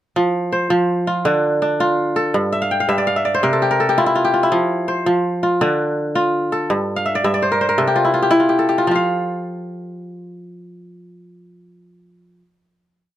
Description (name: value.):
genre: west african traditional.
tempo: 110 BPM (dotted quarters).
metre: 12/8.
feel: straight.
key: F major.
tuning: A4 = 444 Hz.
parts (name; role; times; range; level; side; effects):
kora; solo; 0.2-12.5 s; G2 to G5; -16 LUFS; equal; none.
room: light reverb.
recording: close, detailed microphones.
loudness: -15 LUFS.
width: side -12 dB against mid.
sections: 0.2-8.9 A section; 8.9-11.1 final note.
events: kora fill 2.5-4.5, 7.0-8.9.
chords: 0.2 F5; 1.2 Dm; 2.3 G7sus2; 3.4 C; 4.5 F5; 5.6 Dm; 6.7 Gm13; 7.8 C; 8.9 N.C..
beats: | 0.16 0.70 1.25 1.80 | 2.34 2.89 3.43 3.98 | 4.52 5.07 5.61 6.16 | 6.70 7.24 7.79 8.33 | 8.88 9.42 9.96 10.51.